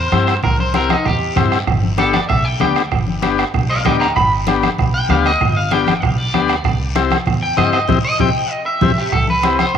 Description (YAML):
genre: latin, cumbia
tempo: 193 BPM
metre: 4/4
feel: straight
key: C major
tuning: A4 = 442 Hz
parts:
  - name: electric guitar at the edge of break-up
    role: melody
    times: 0.0-9.8 s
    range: Eb4 to B5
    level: -19 LUFS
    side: equal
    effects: spring reverb, cassette tape
  - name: upright bass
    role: bass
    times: 0.0-9.8 s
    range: G1 to G2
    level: -21 LUFS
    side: equal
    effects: none
  - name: combo organ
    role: accompaniment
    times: 0.1-9.7 s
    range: B3 to G4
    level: -20 LUFS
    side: left 10 dB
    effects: cassette tape
  - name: bombo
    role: percussion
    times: 0.1-9.8 s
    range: none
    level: -19 LUFS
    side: right 6 dB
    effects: none
  - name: congas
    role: percussion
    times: 0.1-9.8 s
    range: none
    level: -23 LUFS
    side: left 7 dB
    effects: none
  - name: guiro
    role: percussion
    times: 0.1-9.8 s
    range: none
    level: -31 LUFS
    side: left 9 dB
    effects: none
room: light reverb, small room ambience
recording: home recording on cassette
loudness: -13 LUFS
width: side -8 dB against mid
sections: 0.0-9.1 A section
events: clean electric guitar solo 0.0-9.1; drum fill 7.9-9.1; band accent 7.9-9.1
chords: 0.0 C; 1.7 G; 6.6 C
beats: 0.12 | 0.43 0.75 1.06 1.37 | 1.68 1.99 2.30 2.61 | 2.92 3.23 3.54 3.85 | 4.17 4.48 4.79 5.10 | 5.41 5.72 6.03 6.34 | 6.65 6.96 7.27 7.58 | 7.89 8.20 8.51 8.82 | 9.13 9.44 9.75